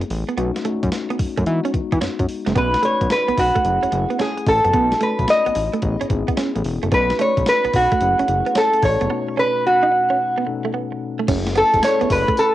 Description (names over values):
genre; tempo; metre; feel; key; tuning
R&B, new jack swing; 110 BPM; 4/4; swing 67% on 16ths; unclear; A4 = 437 Hz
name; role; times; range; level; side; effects
mellow tine electric piano; accompaniment; 0.0-12.5 s; B2 to A4; -28 LUFS; left 7 dB; cassette tape
direct-recorded clean electric guitar; riff; 0.0-12.3 s; G#3 to D#4; -25 LUFS; right 6 dB; analog chorus, cassette tape
fat analog bass; bass; 0.0-12.2 s; E1 to E3; -22 LUFS; equal; none
clean 12-bit digital drum machine; drums; 0.0-12.5 s; crash cymbal, hi-hat, kick drum, snare drum, tambourine; -25 LUFS; equal; overdrive, cassette tape
lap resonator guitar; melody; 2.6-12.5 s; F#4 to D#5; -17 LUFS; equal; none
room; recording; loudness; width
light reverb; home recording on cassette; -16 LUFS; side -14 dB against mid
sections
0.0-2.6 A section; 2.6-11.3 B section; 11.3-12.5 C section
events
break 9.1-11.3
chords
0.4 B9; 1.5 Emaj9; 2.6 B7; 3.6 F#m7; 4.7 B7; 5.8 Amaj7; 6.9 B7; 8.0 F#m7; 9.1 B7; 11.3 F#m9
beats
| 0.37 0.92 1.47 2.01 | 2.56 3.10 3.65 4.19 | 4.74 5.28 5.83 6.37 | 6.92 7.46 8.01 8.56 | 9.10 9.65 10.19 10.74 | 11.28 11.83 12.37